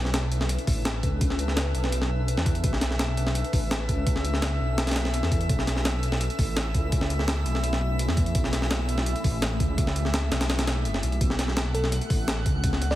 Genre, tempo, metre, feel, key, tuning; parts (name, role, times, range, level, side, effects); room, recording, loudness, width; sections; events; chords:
drum and bass, jungle; 168 BPM; 4/4; straight; B minor; A4 = 445 Hz
granular cloud pad; sustained chords; 0.0-13.0 s; A3 to B4; -35 LUFS; left 1 dB; built-in reverb
dark detuned saw bass; bass; 0.0-13.0 s; F#1 to E2; -27 LUFS; equal
drifting glass-harmonics texture; texture; 0.1-13.0 s; E5 to F#6; -36 LUFS; equal; chorus, built-in reverb
breakbeat sampler-style drum kit; drums; 0.1-13.0 s; hi-hat, kick drum, snare drum; -26 LUFS; equal; small room ambience
bell-like FM electric piano; melody; 11.7-13.0 s; A4 to D5; -32 LUFS; equal; chorus, dub echo
light reverb; heavily compressed radio sound; -23 LUFS; side -14 dB against mid
0.0-13.0 A section
0.0 Bm9; 5.5 A; 11.2 Bm9